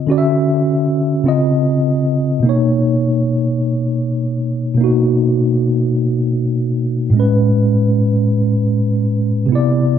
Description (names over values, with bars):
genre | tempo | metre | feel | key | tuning
R&B | 51 BPM (dotted quarters) | 6/8 | straight | unclear | A4 = 441 Hz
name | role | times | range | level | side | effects
mellow tine electric piano | solo | 0.0-10.0 s | A2 to E5 | -13 LUFS | equal | medium stereo tremolo
room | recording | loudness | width
light reverb | dark, warm production | -13 LUFS | side -9 dB against mid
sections
0.0-2.4 A section; 2.4-10.0 B section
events
none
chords
0.1 Dmaj9; 1.3 Dbmaj9; 2.4 Cbmaj9; 7.1 Amaj9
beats
| 0.08 1.26 | 2.44 3.61 | 4.79 5.96 | 7.14 8.32 | 9.49